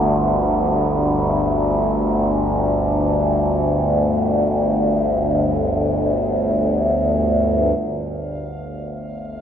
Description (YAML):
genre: dark ambient drone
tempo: free time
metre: none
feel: none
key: unclear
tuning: A4 = 442 Hz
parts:
  - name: overtone-sweeping drone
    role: drone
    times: 0.0-9.4 s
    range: G1 to D2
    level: -17 LUFS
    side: equal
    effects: chorus, built-in reverb
  - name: bubbling stepped-filter texture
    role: texture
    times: 8.3-9.4 s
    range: F5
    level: -41 LUFS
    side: right 2 dB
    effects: chorus, built-in reverb, shimmer reverb
room: wet cathedral reverb, RT60 4.7 s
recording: none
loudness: -16 LUFS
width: side -8 dB against mid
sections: 0.0-7.8 A section; 7.8-9.4 B section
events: none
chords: 0.0 G5